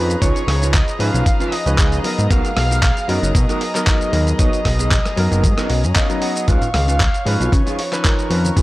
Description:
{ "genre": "nu-disco, nu disco", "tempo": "115 BPM", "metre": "4/4", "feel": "swing 54% on 16ths", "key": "Db mixolydian", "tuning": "A4 = 440 Hz", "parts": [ { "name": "wide unison lead", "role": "melody", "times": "0.0-8.6 s", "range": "Bb4 to F5", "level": "-24 LUFS", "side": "equal", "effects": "analog delay" }, { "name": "warm grand piano", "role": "accompaniment", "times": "0.0-8.6 s", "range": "F3 to Bb5", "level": "-24 LUFS", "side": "left 1 dB", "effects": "sidechain pumping" }, { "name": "rich chamber string section", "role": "sustained chords", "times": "0.0-8.6 s", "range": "Ab4 to Db6", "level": "-32 LUFS", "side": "left 1 dB", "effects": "sidechain pumping" }, { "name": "fat analog bass", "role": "bass", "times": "0.0-8.6 s", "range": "Gb1 to Db3", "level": "-18 LUFS", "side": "equal", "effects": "none" }, { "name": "dusty soul sampler-style drum kit", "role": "drums", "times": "0.1-8.6 s", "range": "handclaps, hi-hat, rim click, shaker", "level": "-23 LUFS", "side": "equal", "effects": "overdrive, small room ambience" }, { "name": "mellow electric guitar", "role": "riff", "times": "0.2-8.6 s", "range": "Cb4 to Ab5", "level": "-27 LUFS", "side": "right 2 dB", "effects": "wide subtle chorus" }, { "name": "electronic kick drum", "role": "drums", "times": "0.2-8.6 s", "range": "none", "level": "-17 LUFS", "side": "equal", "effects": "overdrive, small room ambience" }, { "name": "swell", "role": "sound effects", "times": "5.7-6.5 s", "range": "none", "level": "-28 LUFS", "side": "left 8 dB", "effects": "none" }, { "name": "congas", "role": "percussion", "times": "6.6-8.5 s", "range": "none", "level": "-28 LUFS", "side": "left 1 dB", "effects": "none" } ], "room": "digital ambience", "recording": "dry, gritty hardware recording", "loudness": "-14 LUFS", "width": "side -18 dB against mid", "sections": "0.0-8.6 A section", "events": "clean electric guitar fill 1.5-2.3, 5.4-6.5; swell 5.7-6.5", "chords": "0.0 Db9; 2.3 Cbmaj7; 6.5 Db9", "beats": "| 0.22 0.74 1.26 1.78 | 2.30 2.83 3.35 3.87 | 4.39 4.91 5.43 5.96 | 6.48 7.00 7.52 8.04 | 8.56" }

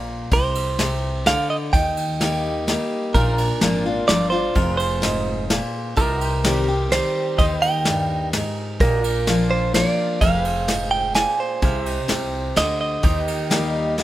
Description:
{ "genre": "honky-tonk and classic country", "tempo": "127 BPM", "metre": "3/4", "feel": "straight", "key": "C minor", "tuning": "A4 = 441 Hz", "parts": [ { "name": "picked steel-string acoustic guitar", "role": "accompaniment", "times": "0.0-14.0 s", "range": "F2 to G4", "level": "-24 LUFS", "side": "left 2 dB", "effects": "none" }, { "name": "upright bass", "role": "bass", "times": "0.0-14.0 s", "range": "F1 to Eb2", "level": "-26 LUFS", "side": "equal", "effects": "none" }, { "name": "direct-recorded clean electric guitar", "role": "second line", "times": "0.3-14.0 s", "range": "Bb4 to Ab5", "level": "-23 LUFS", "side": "right 4 dB", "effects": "tape echo" }, { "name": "soft brush drum kit", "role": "drums", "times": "0.3-14.0 s", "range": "kick drum, ride cymbal, snare drum", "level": "-24 LUFS", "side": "equal", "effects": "none" }, { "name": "pedal steel guitar", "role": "sustained chords", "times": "3.2-14.0 s", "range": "D4 to F5", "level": "-31 LUFS", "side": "equal", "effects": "wide subtle chorus" } ], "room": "small room reverb", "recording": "rough home demo mix", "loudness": "-18 LUFS", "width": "side -14 dB against mid", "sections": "0.0-14.0 A section", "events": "clean electric guitar solo 0.0-14.0", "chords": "0.3 Csus2; 1.7 Eb; 3.1 Bb; 4.6 Fm; 6.0 Cm; 7.4 Eb; 8.8 Bb; 10.2 Fm; 11.6 Cm; 13.0 Eb", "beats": "| 0.32 0.79 1.26 | 1.73 2.20 2.67 | 3.14 3.62 4.09 | 4.56 5.03 5.50 | 5.97 6.44 6.91 | 7.38 7.86 8.33 | 8.80 9.27 9.74 | 10.21 10.68 11.15 | 11.62 12.09 12.56 | 13.04 13.51 13.98" }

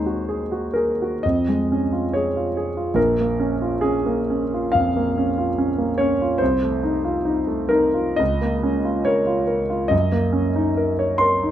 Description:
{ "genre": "classical, romantic character piece for solo piano", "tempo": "60-75 BPM", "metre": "4/4", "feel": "rubato", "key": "unclear", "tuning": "A4 = 440 Hz", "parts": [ { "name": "clear concert grand piano", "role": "solo", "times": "0.0-11.5 s", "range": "Bb1 to C6", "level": "-18 LUFS", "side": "equal", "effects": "none" } ], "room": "light reverb", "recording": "dark, warm production", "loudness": "-19 LUFS", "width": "side -11 dB against mid", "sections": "0.0-11.5 A section", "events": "none", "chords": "0.0 Ab7/Eb; 1.2 Db/F; 3.0 Bbm; 6.4 F7/C; 8.2 Bbm/Db; 9.9 Ebm7/Gb", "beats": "0.28 1.24 2.12 | 2.97 3.82 4.74 5.57 | 6.40 7.26 8.20 9.08 | 9.92 10.79" }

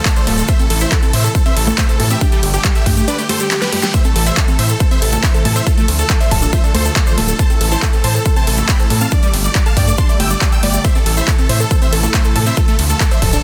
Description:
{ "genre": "uplifting trance", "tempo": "139 BPM", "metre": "4/4", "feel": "straight", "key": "A minor", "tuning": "A4 = 440 Hz", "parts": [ { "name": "big supersaw lead", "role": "melody", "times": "0.0-13.4 s", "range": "G4 to E6", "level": "-24 LUFS", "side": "equal", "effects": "sidechain pumping, tape echo" }, { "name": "plucky unison lead", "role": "second line", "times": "0.0-13.4 s", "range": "G4 to E6", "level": "-29 LUFS", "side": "equal", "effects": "sidechain pumping, tape echo" }, { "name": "lush unison pad", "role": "sustained chords", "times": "0.1-13.4 s", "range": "C3 to G4", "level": "-28 LUFS", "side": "equal", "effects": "chorus, phaser, sidechain pumping" }, { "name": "unison pluck", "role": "arpeggios", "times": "0.1-13.4 s", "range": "G3 to A5", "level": "-27 LUFS", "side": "equal", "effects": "sidechain pumping, tape echo" }, { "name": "big-room dance drum kit", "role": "drums", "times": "0.1-13.4 s", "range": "congas, handclaps, hi-hat, ride cymbal, snare drum", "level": "-22 LUFS", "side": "equal", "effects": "overdrive" }, { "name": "electronic kick drum", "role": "drums", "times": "0.1-13.3 s", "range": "none", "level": "-16 LUFS", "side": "equal", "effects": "overdrive" }, { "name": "egg shaker", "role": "percussion", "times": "0.1-13.4 s", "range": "none", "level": "-30 LUFS", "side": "equal", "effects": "none" }, { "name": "gritty driven synth bass", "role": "bass", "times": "0.3-13.4 s", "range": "D1 to A2", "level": "-19 LUFS", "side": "equal", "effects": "sidechain pumping" }, { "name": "reverse cymbal", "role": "sound effects", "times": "3.5-3.9 s", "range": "none", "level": "-32 LUFS", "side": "equal", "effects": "none" } ], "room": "light reverb, digital ambience", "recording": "dense, heavily limited modern master", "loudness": "-14 LUFS", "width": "mono", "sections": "0.0-13.4 A section", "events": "kick drops out 3.1-3.9; drum fill 3.5-3.9", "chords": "0.5 Am; 2.2 Gsus2; 3.9 Am; 5.7 Dm; 7.4 Am; 9.1 Gsus2; 10.8 Am; 12.6 Dm", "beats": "0.06 | 0.49 0.92 1.35 1.78 | 2.21 2.65 3.08 3.51 | 3.94 4.37 4.80 5.24 | 5.67 6.10 6.53 6.96 | 7.39 7.83 8.26 8.69 | 9.12 9.55 9.98 10.41 | 10.85 11.28 11.71 12.14 | 12.57 13.01" }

